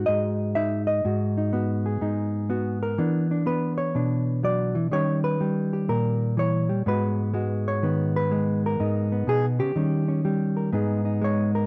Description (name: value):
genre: solo jazz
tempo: 124 BPM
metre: 4/4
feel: swing 66% on 8ths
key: G# minor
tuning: A4 = 440 Hz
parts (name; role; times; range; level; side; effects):
- hollow-body jazz guitar; solo; 0.0-11.7 s; G#2 to E5; -25 LUFS; equal; none
room: light reverb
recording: close, detailed microphones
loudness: -25 LUFS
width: mono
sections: 0.0-10.7 A section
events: none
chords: 0.0 G#m7; 3.0 E7; 4.9 D#7; 6.8 G#m7; 9.8 D#7; 10.7 G#m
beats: 0.08 0.56 | 1.04 1.53 2.01 2.50 | 2.98 3.46 3.95 4.43 | 4.91 5.40 5.88 6.37 | 6.85 7.33 7.82 8.30 | 8.78 9.27 9.75 10.24 | 10.72 11.20